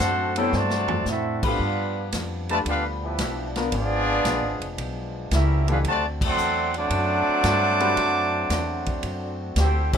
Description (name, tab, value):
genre	jazz, big band swing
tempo	113 BPM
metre	4/4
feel	swing 69% on 8ths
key	D major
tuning	A4 = 440 Hz
part	warm trumpet section	melody	0.0-10.0 s	B3 to D6	-25 LUFS	left 1 dB	none
part	clear trombone section	second line	0.0-10.0 s	C3 to G4	-28 LUFS	right 2 dB	none
part	clear trombone section	sustained chords	0.0-10.0 s	F3 to F#4	-34 LUFS	left 1 dB	none
part	upright bass	bass	0.0-10.0 s	E#1 to A2	-27 LUFS	equal	none
part	swinging big-band drum kit	drums	0.0-10.0 s	crash cymbal, hi-hat, kick drum, ride cymbal, snare drum, toms	-31 LUFS	equal	none
part	clear baby grand piano	accompaniment	0.4-10.0 s	E3 to C#5	-28 LUFS	left 4 dB	none
room	moderate club reverb, RT60 0.5 s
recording	minimal, uncompressed stereo recording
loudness	-21 LUFS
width	side -8 dB against mid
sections	0.0-10.0 A section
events	drum fill 0.5-1.1; band accent 1.3, 6.1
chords	0.0 D7; 1.6 G7; 3.7 G#dim7; 5.8 D7